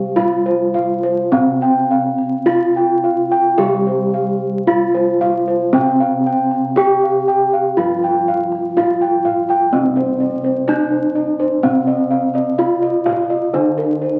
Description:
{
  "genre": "Javanese gamelan",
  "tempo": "52-63 BPM",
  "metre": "4/4",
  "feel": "straight",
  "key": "unclear",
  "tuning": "A4 = 440 Hz",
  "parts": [
    { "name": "gamelan-type bronze metallophone", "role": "melody", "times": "0.0-14.2 s", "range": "C4 to G4", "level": "-19 LUFS", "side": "equal", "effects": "none" },
    { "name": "gamelan-type bronze metallophone", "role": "accompaniment", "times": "0.0-14.2 s", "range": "C3 to G3", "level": "-30 LUFS", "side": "equal", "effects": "none" },
    { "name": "gamelan-type bossed gongs", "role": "bass", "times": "0.0-14.2 s", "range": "C2 to F4", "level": "-30 LUFS", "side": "equal", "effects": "none" },
    { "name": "gamelan-type bossed gongs", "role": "arpeggios", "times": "0.2-14.2 s", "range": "Bb4-25c to G5", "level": "-21 LUFS", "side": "equal", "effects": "none" },
    { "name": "kendang", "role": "percussion", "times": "0.2-13.9 s", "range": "none", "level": "-32 LUFS", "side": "equal", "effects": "none" }
  ],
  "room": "wet studio reverb, RT60 0.7 s",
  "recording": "very old 78 rpm record, vinyl crackle",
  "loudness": "-16 LUFS",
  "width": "mono",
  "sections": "0.0-9.7 A section; 9.7-14.2 B section",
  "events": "none",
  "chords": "none"
}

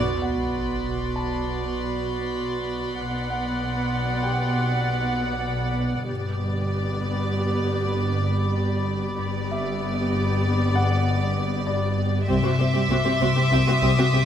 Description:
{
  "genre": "cinematic, suspense film score",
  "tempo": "97 BPM",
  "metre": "5/4",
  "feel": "straight",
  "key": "B phrygian",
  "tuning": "A4 = 439 Hz",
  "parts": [
    { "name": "rich studio violin section", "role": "melody", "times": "0.0-14.2 s", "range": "D5 to E5", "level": "-30 LUFS", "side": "left 1 dB", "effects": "none" },
    { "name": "warm studio viola section", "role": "accompaniment", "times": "0.0-14.2 s", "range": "B3 to F#5", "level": "-27 LUFS", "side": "right 2 dB", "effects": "none" },
    { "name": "marimba with soft mallets", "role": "riff", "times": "0.0-14.2 s", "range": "G2 to C4", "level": "-27 LUFS", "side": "left 3 dB", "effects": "none" },
    { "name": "warm studio cello section", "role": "bass", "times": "0.0-14.2 s", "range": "C2 to B2", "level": "-30 LUFS", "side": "right 2 dB", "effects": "none" },
    { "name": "warm symphonic double bass section", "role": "bass", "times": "0.0-14.2 s", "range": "G1 to C2", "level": "-30 LUFS", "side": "right 2 dB", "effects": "none" },
    { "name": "sub drop", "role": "sound effects", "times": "0.0-3.0 s", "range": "none", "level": "-36 LUFS", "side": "equal", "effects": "none" },
    { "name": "warm symphonic violin section", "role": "texture", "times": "0.0-14.2 s", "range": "B5 to D#6", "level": "-35 LUFS", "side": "left 2 dB", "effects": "none" },
    { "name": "clear baby grand piano", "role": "texture", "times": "0.2-14.2 s", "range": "G4 to A5", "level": "-34 LUFS", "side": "left 1 dB", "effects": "none" }
  ],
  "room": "moderate scoring stage reverb, RT60 1.5 s",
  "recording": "none",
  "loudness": "-22 LUFS",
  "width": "side -9 dB against mid",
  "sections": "0.0-14.2 A section",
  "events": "band accent 0.0-0.5; impact 0.0-3.0",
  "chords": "0.0 Bm; 6.1 G; 12.3 C"
}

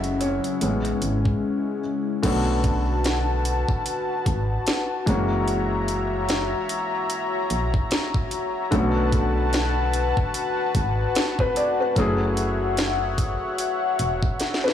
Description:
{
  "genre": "contemporary R&B",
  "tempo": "74 BPM",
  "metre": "4/4",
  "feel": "swing 58% on 16ths",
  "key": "B dorian",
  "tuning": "A4 = 442 Hz",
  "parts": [
    { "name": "felt-muted upright piano", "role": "accompaniment", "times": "0.0-14.7 s", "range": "D3 to F#5", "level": "-26 LUFS", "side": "equal", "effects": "none" },
    { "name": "warm analog pad", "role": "sustained chords", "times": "0.0-14.7 s", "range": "C#3 to A#5", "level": "-26 LUFS", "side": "left 3 dB", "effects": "chorus, sidechain pumping" },
    { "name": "solid FM bass", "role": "bass", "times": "0.0-14.3 s", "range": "E1 to B1", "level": "-26 LUFS", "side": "equal", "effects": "none" },
    { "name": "trap drum kit", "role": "drums", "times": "0.0-14.7 s", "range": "crash cymbal, hi-hat, kick drum, snare drum", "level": "-26 LUFS", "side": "equal", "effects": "overdrive" }
  ],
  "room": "light reverb, digital ambience",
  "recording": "blown-out, overdriven recording, overdrive, small room ambience",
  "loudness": "-21 LUFS",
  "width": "side -10 dB against mid",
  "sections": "0.0-2.2 A section; 2.2-14.7 B section",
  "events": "felt piano solo 0.0-2.2; break 1.4-2.2; drum fill 14.4-14.7",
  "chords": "0.0 F#m7; 0.6 Amaj7; 2.2 Bm7; 5.1 F#7; 8.7 Bm7; 12.0 F#m7"
}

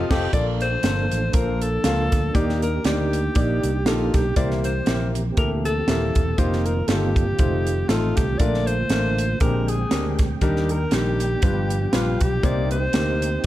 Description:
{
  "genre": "uptempo gospel",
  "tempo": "119 BPM",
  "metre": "4/4",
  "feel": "swing 56% on 8ths",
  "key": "Bb major",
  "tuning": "A4 = 440 Hz",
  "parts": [
    { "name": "clear alto saxophone", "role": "melody", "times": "0.0-13.5 s", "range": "F4 to D5", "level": "-27 LUFS", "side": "left 2 dB", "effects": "none" },
    { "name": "mellow tonewheel organ", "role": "sustained chords", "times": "0.0-13.5 s", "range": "D3 to Eb6", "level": "-30 LUFS", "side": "right 4 dB", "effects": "slow rotary speaker, chorus vibrato" },
    { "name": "warm concert grand piano", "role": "accompaniment", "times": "0.1-13.5 s", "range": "G2 to F5", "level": "-26 LUFS", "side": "left 3 dB", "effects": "none" },
    { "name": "fingered electric bass", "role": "bass", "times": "0.1-13.4 s", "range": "Eb1 to Eb2", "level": "-24 LUFS", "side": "equal", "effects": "none" },
    { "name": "crisp fusion drum kit", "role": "drums", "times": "0.1-13.5 s", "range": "crash cymbal, hi-hat, kick drum, snare drum", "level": "-23 LUFS", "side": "right 1 dB", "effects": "none" }
  ],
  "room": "studio reverb",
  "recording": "none",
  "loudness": "-19 LUFS",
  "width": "side -14 dB against mid",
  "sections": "0.3-13.5 A section",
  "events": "band accent 0.0-0.3",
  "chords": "0.3 Bbmaj7; 2.3 Ebmaj7; 4.4 C7; 6.4 F7sus4; 7.4 F7; 8.4 Bbmaj7; 9.4 Bb13; 10.4 Ebmaj7; 11.4 G7; 12.4 Cm7"
}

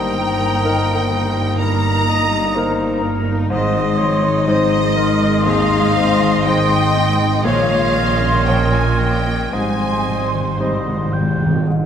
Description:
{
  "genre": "cinematic",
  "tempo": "56-63 BPM",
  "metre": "4/4",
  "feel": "rubato",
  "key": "Ab major",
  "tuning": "A4 = 440 Hz",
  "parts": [
    { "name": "rich studio violin section", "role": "melody", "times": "0.0-10.6 s", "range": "Eb5 to Bb5", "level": "-25 LUFS", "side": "left 2 dB", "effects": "none" },
    { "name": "bright large flute ensemble", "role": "second line", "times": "0.0-11.3 s", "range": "Bb5 to C6", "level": "-24 LUFS", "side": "left 1 dB", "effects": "none" },
    { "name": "mellow clarinet", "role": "second line", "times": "0.0-11.1 s", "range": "Ab4 to Eb5", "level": "-24 LUFS", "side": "left 1 dB", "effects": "none" },
    { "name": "rich studio violin section", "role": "second line", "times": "0.0-10.6 s", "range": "Eb5 to Bb5", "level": "-26 LUFS", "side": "equal", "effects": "none" },
    { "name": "warm oboe", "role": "second line", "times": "0.0-11.7 s", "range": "Db5 to G5", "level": "-27 LUFS", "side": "right 2 dB", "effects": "none" },
    { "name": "clear concert grand piano", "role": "accompaniment", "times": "0.0-11.9 s", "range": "Eb2 to Db5", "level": "-25 LUFS", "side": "left 1 dB", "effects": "none" },
    { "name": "rich studio viola section", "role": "accompaniment", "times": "0.0-11.7 s", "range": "Eb3 to Eb5", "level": "-27 LUFS", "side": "right 1 dB", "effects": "none" },
    { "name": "mellow French horn section", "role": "sustained chords", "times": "0.0-11.3 s", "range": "G3 to Db5", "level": "-24 LUFS", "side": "left 5 dB", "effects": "none" },
    { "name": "concert harp", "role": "arpeggios", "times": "0.0-11.9 s", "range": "G2 to Eb4", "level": "-25 LUFS", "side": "left 6 dB", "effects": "none" },
    { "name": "rich studio cello section", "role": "bass", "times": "0.0-11.9 s", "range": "G2 to Bb2", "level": "-24 LUFS", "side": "right 2 dB", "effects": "none" },
    { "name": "rich studio double bass section", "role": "bass", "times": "0.0-11.9 s", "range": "G1 to Bb1", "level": "-22 LUFS", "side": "right 4 dB", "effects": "none" },
    { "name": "timpani", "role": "percussion", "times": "3.5-11.6 s", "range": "Ab2", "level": "-22 LUFS", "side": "equal", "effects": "none" }
  ],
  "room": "wet scoring stage reverb, RT60 1.6 s",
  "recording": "none",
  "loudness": "-14 LUFS",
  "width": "side -8 dB against mid",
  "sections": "0.0-11.7 A section",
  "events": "timpani fill 9.5-11.7",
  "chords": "0.0 Eb/G; 3.5 Ab; 7.5 Bbmadd9; 9.5 Abmaj7"
}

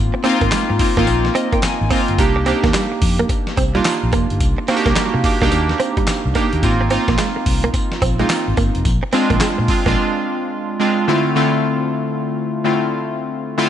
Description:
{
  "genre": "R&B, new jack swing",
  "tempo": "108 BPM",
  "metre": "4/4",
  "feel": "swing 64% on 16ths",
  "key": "C minor",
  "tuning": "A4 = 440 Hz",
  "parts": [
    { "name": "warm analog keys", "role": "accompaniment", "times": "0.0-13.7 s", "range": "D3 to Bb5", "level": "-18 LUFS", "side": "equal", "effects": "chorus" },
    { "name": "vintage muted fingered electric bass", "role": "bass", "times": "0.0-9.9 s", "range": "F1 to C3", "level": "-20 LUFS", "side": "equal", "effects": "none" },
    { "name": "direct-recorded clean electric guitar", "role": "riff", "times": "0.1-9.9 s", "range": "G3 to C4", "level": "-23 LUFS", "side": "right 3 dB", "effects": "ensemble chorus" },
    { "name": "dusty soul sampler-style drum kit", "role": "drums", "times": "0.2-10.0 s", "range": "handclaps, hi-hat, kick drum, snare drum, tambourine", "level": "-20 LUFS", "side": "equal", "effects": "none" }
  ],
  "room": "light reverb",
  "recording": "nothing above 11.0 kHz",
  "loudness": "-15 LUFS",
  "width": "side -10 dB against mid",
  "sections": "0.0-11.1 A section; 11.1-13.7 A section",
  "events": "synth keys fill 1.1-2.2; break 10.0-11.1",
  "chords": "0.0 Ab6; 2.2 Cm9; 6.6 Ab6; 8.9 Bb9; 11.1 Dm9"
}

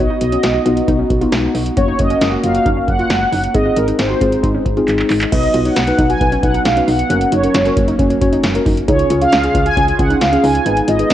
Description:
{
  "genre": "synth-pop",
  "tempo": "135 BPM",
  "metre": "4/4",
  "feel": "straight",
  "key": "Db mixolydian",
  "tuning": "A4 = 441 Hz",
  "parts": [
    { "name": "mellow synth brass", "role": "melody", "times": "0.0-11.1 s", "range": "Bb4 to Ab5", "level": "-18 LUFS", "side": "equal", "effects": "chorus, tape echo" },
    { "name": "muted felt-like synth keys", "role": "accompaniment", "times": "0.0-11.1 s", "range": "Bb3 to Db5", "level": "-19 LUFS", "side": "left 2 dB", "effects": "chorus" },
    { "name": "chorused pulse-width pad", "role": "sustained chords", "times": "0.0-11.1 s", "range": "Db3 to Ab4", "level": "-22 LUFS", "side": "right 1 dB", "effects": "none" },
    { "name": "soft round pluck", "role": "arpeggios", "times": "0.0-11.1 s", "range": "Db4 to Ab4", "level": "-23 LUFS", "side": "right 2 dB", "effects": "chorus, tape echo" },
    { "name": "solid FM bass", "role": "bass", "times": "0.0-11.1 s", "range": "Gb1 to Db2", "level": "-20 LUFS", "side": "equal", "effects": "none" },
    { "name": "electro analog drum machine", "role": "drums", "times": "0.2-11.1 s", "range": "crash cymbal, handclaps, hi-hat, kick drum, snare drum", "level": "-19 LUFS", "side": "equal", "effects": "none" }
  ],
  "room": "moderate scoring stage reverb, RT60 1.5 s, digital ambience",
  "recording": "worn, warbling old tape, cassette tape, warbly pitch drift",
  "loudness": "-12 LUFS",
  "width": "side -12 dB against mid",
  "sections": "0.0-5.3 A section; 5.3-11.1 B section",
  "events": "drum fill 4.9-5.3",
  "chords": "0.0 Cb; 1.8 Gb; 3.5 Ab; 5.3 Cb; 7.1 Gb; 8.9 Db"
}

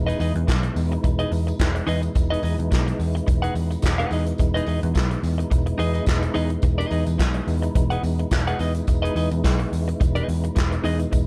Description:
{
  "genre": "disco",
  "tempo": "107 BPM",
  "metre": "4/4",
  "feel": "swing 56% on 16ths",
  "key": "E major",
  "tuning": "A4 = 440 Hz",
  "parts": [
    { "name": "percussive tonewheel organ", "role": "sustained chords", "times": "0.0-11.3 s", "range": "B2 to E4", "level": "-32 LUFS", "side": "equal", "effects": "overdrive, chorus vibrato, slow rotary speaker" },
    { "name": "picked electric bass", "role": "bass", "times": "0.0-11.3 s", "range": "E1 to E2", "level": "-26 LUFS", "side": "equal", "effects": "none" },
    { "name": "clean electric guitar", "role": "accompaniment", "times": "0.1-11.2 s", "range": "D#4 to F#5", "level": "-30 LUFS", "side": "equal", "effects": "none" },
    { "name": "vintage drum kit", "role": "drums", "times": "0.1-11.3 s", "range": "handclaps, hi-hat, kick drum, snare drum", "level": "-26 LUFS", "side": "equal", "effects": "none" },
    { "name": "tambourine", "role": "percussion", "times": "0.1-11.3 s", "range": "none", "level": "-50 LUFS", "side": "equal", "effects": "none" }
  ],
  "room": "little or no reverb",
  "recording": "dark, warm production",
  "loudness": "-22 LUFS",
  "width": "mono",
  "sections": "0.0-11.3 A section",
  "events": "none",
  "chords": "0.0 Emaj7"
}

